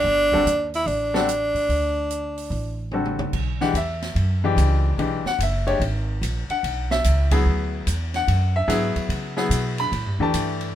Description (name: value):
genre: modal jazz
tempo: 146 BPM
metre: 4/4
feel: swing 66% on 8ths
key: unclear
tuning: A4 = 440 Hz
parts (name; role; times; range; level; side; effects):
- breathy tenor saxophone; melody; 0.0-2.9 s; D4 to E4; -21 LUFS; right 1 dB; none
- bright upright piano; accompaniment; 0.0-10.7 s; D3 to B5; -24 LUFS; left 3 dB; none
- upright bass; bass; 0.0-10.7 s; F#1 to C#3; -23 LUFS; right 1 dB; none
- open jazz drum kit; drums; 0.3-10.7 s; crash cymbal, hi-hat, kick drum, ride cymbal, snare drum, toms; -31 LUFS; right 1 dB; none
room: light reverb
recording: minimal, uncompressed stereo recording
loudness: -20 LUFS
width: side -11 dB against mid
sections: 0.0-3.3 A section; 3.3-10.8 B section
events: drum fill 2.9-3.3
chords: 0.0 D7sus4; 3.3 F#9sus4; 9.9 A9sus4